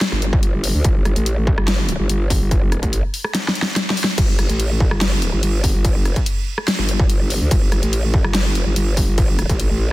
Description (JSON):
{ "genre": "heavy wobble dubstep", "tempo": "144 BPM", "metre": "4/4", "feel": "half-time", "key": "unclear", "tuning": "A4 = 440 Hz", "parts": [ { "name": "dubstep drum kit", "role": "drums", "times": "0.0-9.7 s", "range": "crash cymbal, hi-hat, rim click, snare drum", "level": "-22 LUFS", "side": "equal", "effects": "none" }, { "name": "growl bass", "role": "bass", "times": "0.1-9.9 s", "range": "G1 to D2", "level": "-19 LUFS", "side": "equal", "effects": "chorus, overdrive" }, { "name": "electronic kick drum", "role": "drums", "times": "0.3-9.6 s", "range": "none", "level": "-18 LUFS", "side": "equal", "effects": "distortion" } ], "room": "digital ambience", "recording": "dense, heavily limited modern master", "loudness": "-16 LUFS", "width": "side -18 dB against mid", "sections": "0.0-9.9 A section", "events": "drum fill 3.3-4.2", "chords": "none", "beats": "0.01 0.43 | 0.85 1.26 1.68 2.10 | 2.51 2.93 3.35 3.76 | 4.18 4.60 5.01 5.43 | 5.85 6.26 6.68 7.10 | 7.51 7.93 8.35 8.76 | 9.18 9.60" }